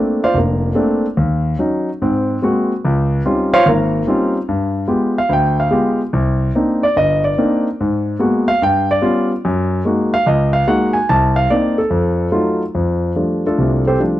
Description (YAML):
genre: jazz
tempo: 145 BPM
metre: 4/4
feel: swing 67% on 8ths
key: unclear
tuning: A4 = 439 Hz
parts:
  - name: warm concert grand piano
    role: solo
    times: 0.0-14.2 s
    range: F1 to A5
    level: -14 LUFS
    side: equal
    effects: none
room: studio ambience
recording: dry, close 1970s-style studio recording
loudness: -14 LUFS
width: side -14 dB against mid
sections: 0.0-12.7 A section; 12.7-14.2 B section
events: none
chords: 0.0 Bbmaj9; 1.2 Ebm7; 2.0 Ab9; 2.8 Dbmaj9#11; 4.5 G7b9; 6.1 Cm9; 7.8 Abm9; 8.6 G7#11; 9.4 Gb69; 11.1 Cm7; 11.9 F7b9; 12.7 F69